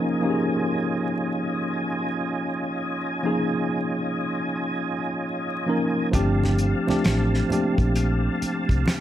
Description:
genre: R&B, neo-soul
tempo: 66 BPM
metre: 4/4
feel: swing 64% on 16ths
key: unclear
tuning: A4 = 440 Hz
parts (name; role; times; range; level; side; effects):
- tine electric piano; accompaniment; 0.0-9.0 s; F3 to Bb4; -24 LUFS; equal; overdrive, fast stereo tremolo
- tonewheel organ; sustained chords; 0.0-9.0 s; C4 to A5; -29 LUFS; right 2 dB; chorus vibrato, slow rotary speaker
- vintage muted fingered electric bass; bass; 6.1-8.8 s; G1 to C2; -23 LUFS; equal; none
- cloth-damped thuddy drum kit; drums; 6.1-9.0 s; finger snaps, hi-hat, kick drum, snare drum; -24 LUFS; equal; none
- congas; percussion; 6.1-9.0 s; none; -33 LUFS; right 1 dB; none
room: light reverb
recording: vinyl crackle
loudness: -22 LUFS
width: side -12 dB against mid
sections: 0.0-9.0 A section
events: none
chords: 0.0 Eb9sus4; 6.1 G9sus4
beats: 0.68 1.58 | 2.49 3.40 4.31 5.22 | 6.13 7.04 7.95 8.86

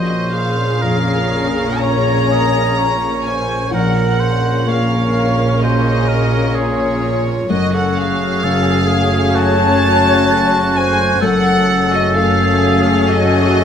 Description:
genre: cinematic, emotional film score for orchestra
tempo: 64 BPM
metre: 4/4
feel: rubato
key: Bb minor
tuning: A4 = 440 Hz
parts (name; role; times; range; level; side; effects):
- warm studio violin section; melody; 0.0-13.6 s; Db5 to Bb5; -20 LUFS; left 2 dB; none
- dark studio violin section; second line; 0.0-13.6 s; Db4 to Bb4; -25 LUFS; left 4 dB; none
- mellow hollow flute section; second line; 0.0-13.6 s; F4 to Db5; -22 LUFS; equal; none
- warm oboe; second line; 0.0-13.6 s; Gb4 to Eb5; -22 LUFS; right 2 dB; none
- dark studio viola section; accompaniment; 0.0-13.6 s; Db3 to Db4; -23 LUFS; right 1 dB; none
- felt-muted upright piano; accompaniment; 0.0-13.6 s; Bb1 to Bb3; -22 LUFS; left 3 dB; none
- clear French horn section; sustained chords; 0.0-13.6 s; A3 to Db4; -23 LUFS; left 4 dB; none
- dark studio cello section; bass; 0.0-13.6 s; Gb2 to Bb2; -23 LUFS; right 1 dB; none
- dark studio double bass section; bass; 0.0-13.6 s; Gb1 to Bb1; -21 LUFS; right 3 dB; none
room: moderate scoring stage reverb, RT60 1.6 s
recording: close, detailed microphones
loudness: -12 LUFS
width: side -8 dB against mid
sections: 0.0-13.6 A section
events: none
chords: 0.0 Bbmadd9; 7.5 Gbmadd9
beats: 0.83 1.82 2.78 | 3.73 4.68 5.62 6.57 | 7.50 8.43 9.35 10.29 | 11.22 12.15 13.08

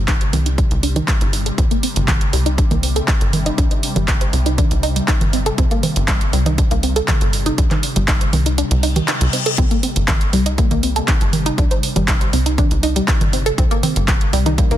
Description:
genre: melodic techno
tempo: 120 BPM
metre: 4/4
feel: straight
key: C minor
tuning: A4 = 440 Hz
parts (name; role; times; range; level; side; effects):
- tight sequencer bass; bass; 0.0-14.8 s; G1 to C2; -19 LUFS; equal; tube saturation, sidechain pumping
- swarming drone; drone; 0.0-14.8 s; C3 to G3; -28 LUFS; left 1 dB; built-in reverb, sidechain pumping
- analog pluck; arpeggios; 0.1-14.8 s; G3 to C5; -22 LUFS; right 1 dB; chorus, phaser, sidechain pumping, dub echo
- electronic kick drum; drums; 0.1-14.7 s; none; -17 LUFS; equal; overdrive
- house drum kit; drums; 0.1-14.8 s; congas, handclaps, hi-hat; -21 LUFS; right 2 dB; overdrive, sidechain pumping on hats, sidechain pumping on perc
- reverse cymbal; sound effects; 8.8-9.6 s; none; -25 LUFS; left 7 dB; none
room: little or no reverb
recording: dense, heavily limited modern master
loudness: -14 LUFS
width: side -12 dB against mid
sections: 0.0-14.8 A section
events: filter sweep on synth arpeggio sound 0.0-14.8; kick drops out 8.6-9.6; reverse cymbal 8.8-9.6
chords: 0.0 Cm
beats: 0.08 0.58 1.08 | 1.58 2.08 2.58 3.08 | 3.58 4.08 4.58 5.08 | 5.58 6.08 6.58 7.08 | 7.58 8.08 8.58 9.08 | 9.58 10.08 10.58 11.08 | 11.58 12.08 12.58 13.08 | 13.58 14.08 14.58

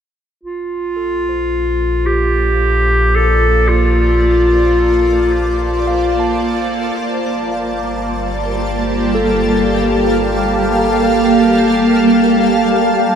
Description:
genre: ambient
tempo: free time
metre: none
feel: none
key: Bb major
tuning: A4 = 440 Hz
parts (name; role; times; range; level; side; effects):
- warm clarinet; melody; 0.4-6.4 s; F4 to A4; -16 LUFS; left 1 dB; ping-pong delay
- shimmering ambient pad; sustained chords; 1.8-13.2 s; G3 to A5; -15 LUFS; right 1 dB; chorus, built-in reverb, phaser
- round analog bass; bass; 0.4-13.2 s; G1 to Bb1; -20 LUFS; equal; none
- overdriven tine electric piano; arpeggios; 1.0-13.2 s; A4 to A5; -24 LUFS; equal; ping-pong delay
room: wet cathedral reverb, RT60 6.7 s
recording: in a vast, echoing space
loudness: -12 LUFS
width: side -8 dB against mid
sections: 0.4-13.2 A section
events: fade-in on ambient pad 0.4-13.2; fade-in on tine electric piano 0.4-13.2; fade-out on analog synth bass 0.4-13.2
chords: 0.4 Bbmaj7; 7.0 Gm9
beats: free time

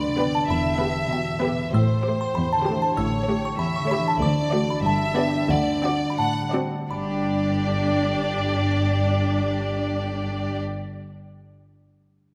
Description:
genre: cinematic, playful, whimsical film cue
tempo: 81-97 BPM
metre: 2/4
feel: straight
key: G major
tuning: A4 = 441 Hz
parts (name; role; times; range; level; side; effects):
- music box; melody; 0.0-11.2 s; F#5 to E6; -30 LUFS; equal; none
- clear chamber violin section; second line; 0.0-10.6 s; G4 to F#5; -32 LUFS; equal; none
- concert harp; arpeggios; 0.0-11.5 s; E2 to G5; -30 LUFS; equal; none
- warm chamber cello section; bass; 0.0-10.6 s; D2 to B2; -31 LUFS; equal; none
- rich chamber violin section; melody; 0.2-10.6 s; B4 to D5; -34 LUFS; equal; none
- rich chamber viola section; accompaniment; 0.2-10.6 s; A3 to G4; -31 LUFS; equal; none
- rich chamber double bass section; bass; 0.5-10.6 s; E1 to D2; -31 LUFS; equal; none
room: wet scoring stage reverb, RT60 1.9 s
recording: none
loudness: -23 LUFS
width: mono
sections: 0.0-6.9 A section; 6.9-9.8 B section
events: slowing down 3.6-6.9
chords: 0.5 Em; 1.7 Am7; 4.2 D; 4.8 G; 5.5 D7; 6.9 G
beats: | 0.48 1.10 | 1.72 2.34 | 2.96 3.58 | 4.20 4.84 | 5.50 6.18 | 6.91 7.64 | 8.38 9.11

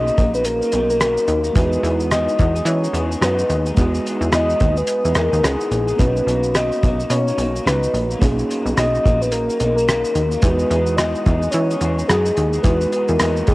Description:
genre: indie pop, bedroom pop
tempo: 108 BPM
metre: 4/4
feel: swing 60% on 16ths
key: E lydian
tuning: A4 = 441 Hz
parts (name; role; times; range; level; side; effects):
- soft octave-layered synth lead; melody; 0.0-13.5 s; G#4 to D#5; -20 LUFS; left 1 dB; wide subtle chorus, cassette tape
- electric guitar through a small old amp; accompaniment; 0.0-13.5 s; B2 to G#4; -27 LUFS; left 2 dB; analog chorus, vibrato effect, cassette tape
- reed electric piano; accompaniment; 0.0-13.5 s; G#3 to G#4; -27 LUFS; right 2 dB; cassette tape
- plucky analog bass; bass; 0.0-13.5 s; A#1 to E3; -21 LUFS; equal; none
- cloth-damped thuddy drum kit; drums; 0.1-13.5 s; hi-hat, kick drum, rim click, shaker; -20 LUFS; equal; none
room: light reverb, small room ambience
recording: home recording on cassette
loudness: -16 LUFS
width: side -20 dB against mid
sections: 0.0-13.5 A section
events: none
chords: 0.0 Bmaj7; 1.6 Emaj7; 6.0 Bmaj7; 10.4 Emaj7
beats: 0.45 1.01 | 1.56 2.12 2.67 3.22 | 3.78 4.33 4.89 5.44 | 6.00 6.55 7.10 7.66 | 8.21 8.77 9.32 9.87 | 10.43 10.98 11.54 12.09 | 12.64 13.20

